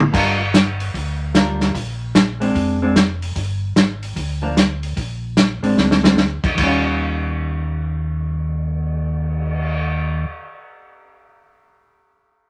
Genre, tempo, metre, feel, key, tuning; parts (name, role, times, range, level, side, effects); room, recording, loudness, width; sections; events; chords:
soul jazz organ trio; 149 BPM; 4/4; swing 64% on 8ths; A4 = 440 Hz
mellow tonewheel organ; bass; 0.0-10.2 s; F1 to Eb2; -26 LUFS; equal; overdrive, chorus vibrato, slow rotary speaker
warm soul drum kit; drums; 0.0-9.7 s; crash cymbal, cymbal swell, hi-hat, kick drum, snare drum, toms; -20 LUFS; equal
hollow-body jazz guitar; accompaniment; 0.1-10.4 s; Eb3 to Bb4; -23 LUFS; equal
moderate studio reverb, RT60 0.6 s; -19 LUFS; mono
0.1-6.6 A section; 6.6-9.8 B section
drum fill 5.8-6.2
0.1 Gm7; 1.7 Bb9; 3.4 G5; 5.0 Bb9; 6.6 Eb9